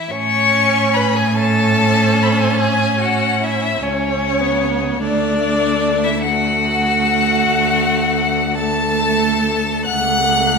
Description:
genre	classical, slow romantic movement for string quartet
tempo	42-52 BPM (dotted quarters)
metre	12/8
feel	rubato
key	A major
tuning	A4 = 440 Hz
part	rich violin	melody	0.0-10.6 s	C#5 to F#6	-18 LUFS	left 6 dB	none
part	rich violin	second line	0.0-10.6 s	C#4 to F#5	-21 LUFS	equal	none
part	warm viola	accompaniment	0.1-10.6 s	A3 to C#4	-21 LUFS	right 3 dB	none
part	rich cello	bass	0.1-10.6 s	C#2 to A2	-20 LUFS	right 2 dB	none
room	wet recital hall reverb, RT60 1.3 s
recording	recorded in a church or concert hall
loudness	-14 LUFS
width	side -5 dB against mid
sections	0.1-10.6 A section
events	none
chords	0.1 A; 5.0 D; 9.9 A/C#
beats	| 0.10 1.35 2.57 3.80 | 5.01 6.22 7.39 8.56 | 9.86

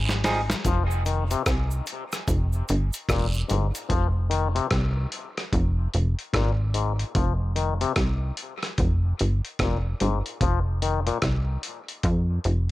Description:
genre	dub reggae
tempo	74 BPM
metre	4/4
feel	swing 62% on 16ths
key	F minor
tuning	A4 = 440 Hz
part	plucky analog bass	bass	0.0-12.7 s	F1 to F2	-24 LUFS	equal	none
part	dusty soul sampler-style drum kit	drums	0.1-12.7 s	hi-hat, kick drum, rim click, snare drum	-28 LUFS	equal	none
part	cabasa and guiro	percussion	0.1-3.9 s	none	-37 LUFS	right 4 dB	high-pass filter on perc, dub echo
part	overdriven clav	arpeggios	0.7-11.2 s	Ab2 to F3	-30 LUFS	left 7 dB	auto-wah, dub echo
room	light reverb, digital ambience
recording	none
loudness	-22 LUFS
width	side -17 dB against mid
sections	0.0-12.7 A section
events	break 0.0-0.7; drum fill 0.0-0.7; part muted 3.9-12.7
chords	0.0 Fm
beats	| 0.65 1.46 2.27 3.09 | 3.90 4.71 5.53 6.34 | 7.15 7.96 8.78 9.59 | 10.41 11.22 12.03

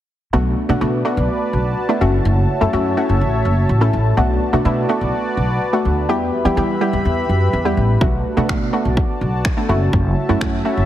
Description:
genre	dance-pop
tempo	125 BPM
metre	4/4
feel	straight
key	B minor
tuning	A4 = 440 Hz
part	analog pluck	accompaniment	0.3-10.9 s	G3 to A4	-20 LUFS	equal	chorus, sidechain pumping
part	sweeping resonant pad	sustained chords	0.3-10.9 s	F#4 to B5	-23 LUFS	left 1 dB	chorus, sidechain pumping
part	upright bass	bass	0.3-10.9 s	F#1 to E3	-18 LUFS	equal	sidechain pumping
part	pop drum kit	drums	8.0-10.5 s	finger snaps, kick drum	-20 LUFS	equal	overdrive
room	light reverb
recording	heavily compressed radio sound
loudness	-15 LUFS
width	side -12 dB against mid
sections	0.3-10.9 A section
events	none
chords	0.3 Bm7; 2.0 F#m7; 4.2 Bm7; 6.1 Em; 8.0 Bm7; 9.7 F#m7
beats	| 0.33 0.81 1.29 1.77 | 2.25 2.73 3.21 3.69 | 4.17 4.65 5.13 5.61 | 6.09 6.57 7.05 7.53 | 8.01 8.49 8.97 9.45 | 9.93 10.41

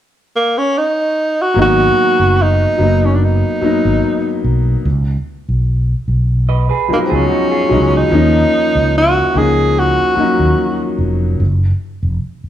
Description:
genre	soul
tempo	73 BPM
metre	4/4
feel	swing 54% on 16ths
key	F# major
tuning	A4 = 440 Hz
part	warm tenor saxophone	melody	0.4-11.0 s	A#3 to G#4	-14 LUFS	right 1 dB	none
part	warm concert grand piano	accompaniment	1.5-11.4 s	E#3 to D#4	-16 LUFS	left 2 dB	none
part	fretless electric bass	bass	1.6-12.5 s	E#1 to D#2	-15 LUFS	equal	none
part	electric guitar through a small old amp	riff	6.5-8.1 s	D#4 to D#5	-20 LUFS	right 7 dB	spring reverb
room	moderate large studio reverb, RT60 1.4 s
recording	band playing live in one room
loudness	-12 LUFS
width	side -11 dB against mid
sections	0.0-1.6 A section; 1.6-12.5 B section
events	none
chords	0.0 N.C.; 1.6 G#m9; 4.8 C#9sus4; 8.1 F#maj13; 11.4 F#maj7(no3)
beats	0.74 | 1.56 2.38 3.20 4.02 | 4.84 5.66 6.48 7.30 | 8.12 8.94 9.76 10.58 | 11.40 12.22

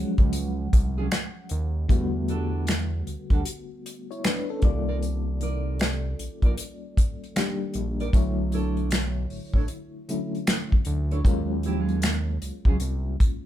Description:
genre	R&B, neo-soul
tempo	77 BPM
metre	4/4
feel	swing 64% on 16ths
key	unclear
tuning	A4 = 440 Hz
part	FM electric piano with tremolo	accompaniment	0.0-13.5 s	D3 to F#5	-31 LUFS	left 2 dB	none
part	fat analog bass	bass	0.0-13.3 s	A1 to E2	-28 LUFS	equal	none
part	unplugged drum kit	drums	0.2-13.4 s	finger snaps, hi-hat, kick drum, snare drum	-22 LUFS	equal	none
part	nylon-string guitar	second line	1.0-12.8 s	F#3 to D5	-32 LUFS	right 4 dB	none
room	light reverb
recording	band playing live in one room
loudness	-23 LUFS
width	side -12 dB against mid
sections	0.0-1.9 A section; 1.9-13.5 B section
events	FM electric piano solo 0.0-1.9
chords	0.0 D#m11; 1.9 Em11; 4.6 Cm11; 8.1 Bm11; 11.2 D#m11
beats	0.34 1.12 | 1.90 2.68 3.46 4.23 | 5.01 5.79 6.57 7.35 | 8.13 8.91 9.69 10.47 | 11.25 12.03 12.80

